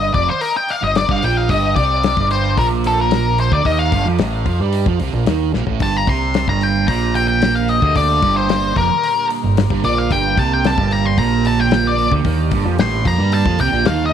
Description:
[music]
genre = psychedelic rock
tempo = 112 BPM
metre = 4/4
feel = straight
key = G minor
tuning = A4 = 443 Hz
[part]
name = octave-fuzz lead guitar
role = melody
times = 0.0-14.1 s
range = A4 to C6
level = -18 LUFS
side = left 4 dB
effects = distortion, tape echo
[part]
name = fuzz guitar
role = riff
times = 0.0-14.1 s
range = F2 to G3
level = -20 LUFS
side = right 11 dB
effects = distortion, phaser
[part]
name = growling fingered electric bass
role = bass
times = 0.0-14.1 s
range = F1 to G2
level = -19 LUFS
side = equal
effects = overdrive
[part]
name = damped 70s drum kit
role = drums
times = 0.1-14.0 s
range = hi-hat, kick drum, snare drum, toms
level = -21 LUFS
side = left 4 dB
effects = none
[part]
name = string machine, cellos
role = sustained chords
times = 5.8-14.1 s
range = D3 to Bb4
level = -28 LUFS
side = right 11 dB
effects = ensemble chorus
[sound]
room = little or no reverb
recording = 1960s-style stereo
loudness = -14 LUFS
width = side -8 dB against mid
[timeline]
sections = 0.0-14.1 A section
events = lead electric guitar solo 0.0-14.1; drum fill 5.5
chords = 0.0 Gm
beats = 0.42 0.96 | 1.50 2.04 2.58 3.12 | 3.65 4.19 4.73 5.27 | 5.81 6.35 6.88 7.42 | 7.96 8.50 9.03 9.57 | 10.11 10.64 11.18 11.72 | 12.25 12.79 13.32 13.86

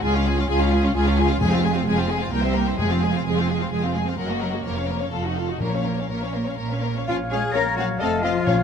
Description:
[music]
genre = quick classical-period movement for symphony orchestra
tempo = 130 BPM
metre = 3/4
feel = rubato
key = Bb minor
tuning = A4 = 440 Hz
[part]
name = warm studio violin section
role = melody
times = 0.0-8.6 s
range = Db5 to Ab5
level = -31 LUFS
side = left 5 dB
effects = none
[part]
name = rich studio violin section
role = second line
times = 0.0-8.5 s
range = F4 to Eb5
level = -28 LUFS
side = left 5 dB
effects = none
[part]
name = rich studio viola section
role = accompaniment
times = 0.0-8.5 s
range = Gb3 to F4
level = -27 LUFS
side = right 2 dB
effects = none
[part]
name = clear studio cello section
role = bass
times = 0.0-8.6 s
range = C2 to Bb4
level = -26 LUFS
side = right 2 dB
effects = none
[part]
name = rich studio double bass section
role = bass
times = 0.0-8.6 s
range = F1 to Db2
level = -27 LUFS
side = right 2 dB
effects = none
[part]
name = timpani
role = percussion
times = 1.4-3.4, 5.6-6.3, 8.5-8.6 s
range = F2 to Bb2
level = -29 LUFS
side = left 2 dB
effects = none
[part]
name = clear clarinet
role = second line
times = 7.1-8.6 s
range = Db5 to Eb5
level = -31 LUFS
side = left 5 dB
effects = none
[part]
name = mellow silver concert flute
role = second line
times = 7.1-8.6 s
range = F5 to Bb5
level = -28 LUFS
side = left 3 dB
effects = none
[part]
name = warm oboe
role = second line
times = 7.1-8.6 s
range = F5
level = -30 LUFS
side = right 2 dB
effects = none
[part]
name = mellow French horn section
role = sustained chords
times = 7.1-8.6 s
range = F3 to Bb3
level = -26 LUFS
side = left 7 dB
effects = none
[sound]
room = moderate concert hall reverb, RT60 1.9 s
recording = none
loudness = -20 LUFS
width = side -7 dB against mid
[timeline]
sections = 0.0-7.1 A section; 7.1-8.6 A section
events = none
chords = 0.0 Db; 1.4 Fm; 2.3 C7; 2.8 Fm; 4.2 Ebm/Gb; 4.6 Bbm/F; 5.1 F7b9; 5.6 Bbm; 8.0 F7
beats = | 0.04 0.49 0.95 | 1.40 1.86 2.32 | 2.78 3.24 3.71 | 4.17 4.64 5.11 | 5.60 6.10 6.59 | 7.08 7.55 8.01 | 8.47

